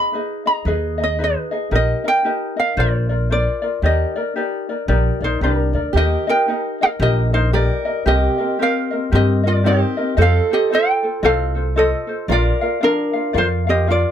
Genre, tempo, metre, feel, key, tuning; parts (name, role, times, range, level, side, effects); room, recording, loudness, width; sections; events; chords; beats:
Hawaiian; 113 BPM; 4/4; swing 62% on 8ths; Eb major; A4 = 440 Hz
ukulele; melody; 0.0-14.1 s; D4 to Cb6; -19 LUFS; equal
ukulele; accompaniment; 0.0-14.1 s; C4 to F5; -22 LUFS; left 3 dB
upright bass; bass; 0.7-14.0 s; Bb1 to G2; -18 LUFS; equal
fingerpicked steel-string acoustic guitar; second line; 5.9-14.1 s; G4 to Bb4; -25 LUFS; right 6 dB
light reverb; close, detailed microphones; -16 LUFS; side -9 dB against mid
0.0-5.9 A section; 5.9-14.1 A section
0.0 Abm; 1.7 Eb/Bb; 2.8 Bbadd9; 3.8 Ebmaj7; 5.9 Eb; 8.1 Cm7; 10.2 F7; 12.3 Bb
0.12 0.65 1.18 | 1.71 2.24 2.77 3.30 | 3.83 4.36 4.89 5.42 | 5.95 6.47 7.00 7.53 | 8.06 8.59 9.12 9.64 | 10.17 10.70 11.23 11.76 | 12.29 12.82 13.35 13.88